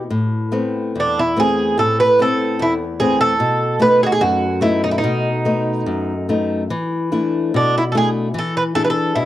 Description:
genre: fado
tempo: 73 BPM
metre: 2/4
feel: rubato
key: A harmonic minor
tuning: A4 = 441 Hz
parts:
  - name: flamenco guitar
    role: accompaniment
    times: 0.0-9.3 s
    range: E2 to G#4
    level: -19 LUFS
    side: left 2 dB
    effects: none
  - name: Irish bouzouki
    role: melody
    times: 1.0-9.3 s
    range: D4 to B4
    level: -17 LUFS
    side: right 2 dB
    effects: none
room: light reverb, studio reverb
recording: dry, close 1970s-style studio recording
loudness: -15 LUFS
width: side -13 dB against mid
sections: 0.1-9.3 A section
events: none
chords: 0.1 Amadd9; 3.4 B7; 6.7 E7sus4; 8.4 E7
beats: | 0.12 0.96 | 1.78 2.60 | 3.40 4.20 | 5.02 5.86 | 6.70 7.54 | 8.36 9.16

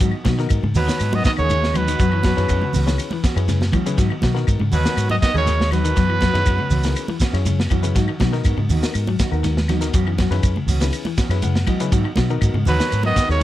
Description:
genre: afrobeat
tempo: 121 BPM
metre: 4/4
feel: straight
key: G# minor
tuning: A4 = 440 Hz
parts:
  - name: electric guitar at the edge of break-up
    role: arpeggios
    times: 0.0-13.2 s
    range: C#3 to F#3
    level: -26 LUFS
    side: left 6 dB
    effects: plate reverb
  - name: mellow electric guitar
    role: stabs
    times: 0.0-13.4 s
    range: D#3 to F#4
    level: -30 LUFS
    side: right 7 dB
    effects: plate reverb
  - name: vintage muted fingered electric bass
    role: bass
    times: 0.0-13.4 s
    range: C#2 to F#3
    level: -20 LUFS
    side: equal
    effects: none
  - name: crunchy breakbeat drum kit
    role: drums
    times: 0.0-13.4 s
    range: hi-hat, kick drum, ride cymbal, snare drum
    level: -23 LUFS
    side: equal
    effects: none
  - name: congas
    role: percussion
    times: 0.0-13.4 s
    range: none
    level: -28 LUFS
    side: right 4 dB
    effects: none
  - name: shekere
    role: percussion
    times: 0.0-13.4 s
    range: none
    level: -27 LUFS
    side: right 2 dB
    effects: none
  - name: claves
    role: percussion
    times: 0.1-13.4 s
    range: none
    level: -37 LUFS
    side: left 14 dB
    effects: none
  - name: bright reed electric piano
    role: accompaniment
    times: 0.4-13.4 s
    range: B3 to F#5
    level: -31 LUFS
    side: left 11 dB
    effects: plate reverb
  - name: warm trumpet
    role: melody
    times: 0.8-7.2, 12.7-13.4 s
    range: B4 to D#5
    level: -22 LUFS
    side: right 3 dB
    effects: plate reverb
  - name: bright alto saxophone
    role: second line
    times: 0.8-7.2, 12.7-13.4 s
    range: F#3 to B3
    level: -31 LUFS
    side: right 2 dB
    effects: plate reverb
  - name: warm trombone section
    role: second line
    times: 0.8-7.2, 12.7-13.4 s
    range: B2 to D#3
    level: -32 LUFS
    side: left 8 dB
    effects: plate reverb
room: light reverb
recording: none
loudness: -16 LUFS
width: side -14 dB against mid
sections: 0.0-13.4 A section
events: reed electric piano fill 11.2-11.9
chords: 0.0 G#m7; 2.0 F#7sus4; 4.0 G#m7; 6.0 F#7sus4; 8.0 G#m7; 9.9 F#7sus4; 11.9 G#m7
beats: | 0.00 0.49 0.99 1.49 | 1.99 2.48 2.98 3.48 | 3.98 4.47 4.97 5.47 | 5.96 6.46 6.96 7.45 | 7.95 8.45 8.94 9.44 | 9.93 10.43 10.93 11.42 | 11.92 12.41 12.91 13.40

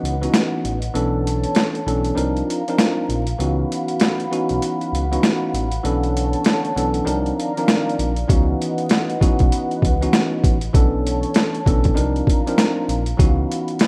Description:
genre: hip hop, boom-bap hip-hop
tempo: 98 BPM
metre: 4/4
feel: swing 62% on 16ths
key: unclear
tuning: A4 = 440 Hz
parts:
  - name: bell-like tine electric piano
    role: accompaniment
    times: 0.0-13.9 s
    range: E3 to Bb4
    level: -25 LUFS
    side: equal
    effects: cassette tape, high-pass filter, low-pass filter
  - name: dark analog pad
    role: sustained chords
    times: 0.0-13.9 s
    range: D3 to B5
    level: -29 LUFS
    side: equal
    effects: chorus, high-pass filter, low-pass filter
  - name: smooth gliding synth bass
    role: bass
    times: 0.0-13.4 s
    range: A1 to C#2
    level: -25 LUFS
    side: equal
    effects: none
  - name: boom bap sampler-style drum kit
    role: drums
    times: 0.1-13.9 s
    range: hi-hat, kick drum, snare drum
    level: -21 LUFS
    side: equal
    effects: overdrive, vintage 12-bit sampler grit
room: light reverb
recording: rough home demo mix, vinyl crackle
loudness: -19 LUFS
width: mono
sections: 0.0-13.9 A section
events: break 0.0-8.3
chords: 0.0 C#m11; 0.9 Bm11; 2.2 Cm11; 3.4 C#m11; 5.8 Bm11; 7.1 Cm11; 8.3 C#m11; 10.7 Bm11; 12.0 Cm11; 13.2 C#m11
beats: 0.33 | 0.95 1.56 2.17 2.78 | 3.40 4.01 4.62 5.23 | 5.84 6.46 7.07 7.68 | 8.29 8.91 9.52 10.13 | 10.74 11.36 11.97 12.58 | 13.19 13.80

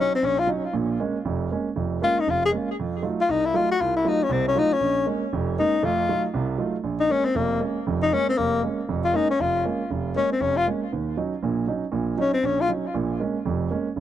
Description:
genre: jazz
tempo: 236 BPM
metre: 4/4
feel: swing 59% on 8ths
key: Bb minor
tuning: A4 = 439 Hz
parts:
  - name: breathy tenor saxophone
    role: melody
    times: 0.0-12.7 s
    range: Bb3 to Ab4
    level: -22 LUFS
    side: left 4 dB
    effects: tape echo
  - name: warm grand piano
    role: accompaniment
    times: 0.0-14.0 s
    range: F1 to F4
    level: -25 LUFS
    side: right 5 dB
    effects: none
room: moderate booth ambience, RT60 0.2 s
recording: dry, close 1970s-style studio recording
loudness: -21 LUFS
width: side -11 dB against mid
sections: 0.0-6.8 A section; 6.8-14.0 A section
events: none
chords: 0.0 Ebm7; 0.7 Bbm7; 2.8 F7b9; 4.8 Bbm7; 5.8 F7b9; 6.8 Bbm7; 10.9 Ebm7; 12.9 Bbm7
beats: 0.23 0.49 | 0.74 0.99 1.25 1.50 | 1.76 2.01 2.27 2.52 | 2.78 3.03 3.29 3.54 | 3.79 4.05 4.30 4.56 | 4.81 5.07 5.32 5.57 | 5.83 6.08 6.34 6.59 | 6.84 7.10 7.35 7.61 | 7.86 8.11 8.37 8.62 | 8.88 9.13 9.38 9.64 | 9.89 10.15 10.40 10.65 | 10.91 11.16 11.41 11.67 | 11.92 12.18 12.43 12.69 | 12.94 13.19 13.45 13.70 | 13.96

